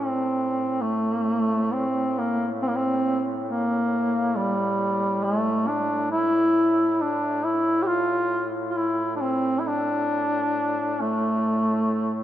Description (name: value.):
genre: caucasian folk, Caucasian lament.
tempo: 68 BPM.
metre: 4/4.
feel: rubato.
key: A phrygian.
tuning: A4 = 440 Hz.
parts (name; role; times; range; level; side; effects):
warm duduk; melody; 0.0-12.2 s; G3 to G4; -22 LUFS; equal; none.
warm duduk; drone; 0.0-12.2 s; A2; -33 LUFS; left 1 dB; none.
room: wet church reverb, RT60 3.4 s.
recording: none.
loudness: -22 LUFS.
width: side -12 dB against mid.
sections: 0.0-12.2 A section.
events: none.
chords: none.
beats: 0.83 1.73 | 2.62 3.50 4.36 5.24 | 6.12 7.00 7.88 8.76 | 9.65 10.54 11.44.